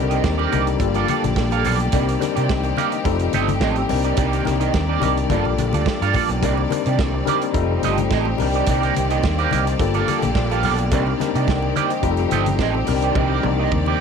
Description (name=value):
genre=disco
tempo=107 BPM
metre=4/4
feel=straight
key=C dorian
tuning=A4 = 440 Hz
part: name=tine electric piano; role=accompaniment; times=0.0-14.0 s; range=G3 to G5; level=-24 LUFS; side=left 14 dB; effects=overdrive, fast stereo tremolo
part: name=clear symphonic string section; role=sustained chords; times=0.0-14.0 s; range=Eb3 to D5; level=-26 LUFS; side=right 1 dB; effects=none
part: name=overdriven fingered electric bass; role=bass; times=0.0-13.9 s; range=F1 to C3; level=-22 LUFS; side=equal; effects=none
part: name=electric guitar at the edge of break-up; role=accompaniment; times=0.1-14.0 s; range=Bb3 to F5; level=-24 LUFS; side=right 15 dB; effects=wah
part: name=warm soul drum kit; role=drums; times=0.1-13.9 s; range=hi-hat, kick drum, snare drum, toms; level=-25 LUFS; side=right 3 dB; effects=none
part: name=congas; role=percussion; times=0.2-14.0 s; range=none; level=-29 LUFS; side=left 7 dB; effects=none
room=studio ambience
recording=1960s-style stereo with parts hard left and right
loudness=-17 LUFS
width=side -6 dB against mid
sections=0.0-14.0 A section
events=drum fill 13.2-14.0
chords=0.0 Cm9; 0.8 Gm9; 1.9 Cm9; 3.1 F9; 3.9 Cm9; 5.3 Gm9; 6.4 Cm9; 7.5 F9; 8.4 Cm9; 9.8 Gm9; 10.9 Cm9; 12.0 F9; 12.9 Cm9